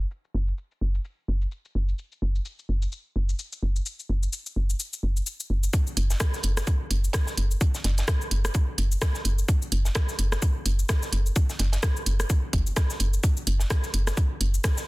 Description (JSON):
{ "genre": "minimal techno", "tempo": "128 BPM", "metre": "4/4", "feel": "swing 58% on 16ths", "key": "unclear", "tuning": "A4 = 440 Hz", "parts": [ { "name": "woody FM bass", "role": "bass", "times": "0.0-14.6 s", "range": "F#1", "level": "-24 LUFS", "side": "equal", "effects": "tube saturation, sidechain pumping" }, { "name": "garage drum kit", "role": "drums", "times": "0.0-14.9 s", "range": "cabasa, hi-hat, rim click", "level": "-31 LUFS", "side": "equal", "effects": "soft clipping on snare" }, { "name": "deep reggae drum kit", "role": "drums", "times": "5.7-14.9 s", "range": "hi-hat, snare drum", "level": "-39 LUFS", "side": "right 2 dB", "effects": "sidechain pumping on hats, high-pass filter on hats, soft clipping on snare, high-pass filter on snare, high-pass filter on room" }, { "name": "electronic kick drum", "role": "drums", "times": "5.7-14.7 s", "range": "none", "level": "-25 LUFS", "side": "equal", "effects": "none" } ], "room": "little or no reverb", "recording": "dense, heavily limited modern master, low-pass filter", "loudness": "-24 LUFS", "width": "side -22 dB against mid", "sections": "0.0-5.7 A section; 5.7-14.9 B section", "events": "filter sweep 0.0-5.7; drop 5.7-14.9", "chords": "none" }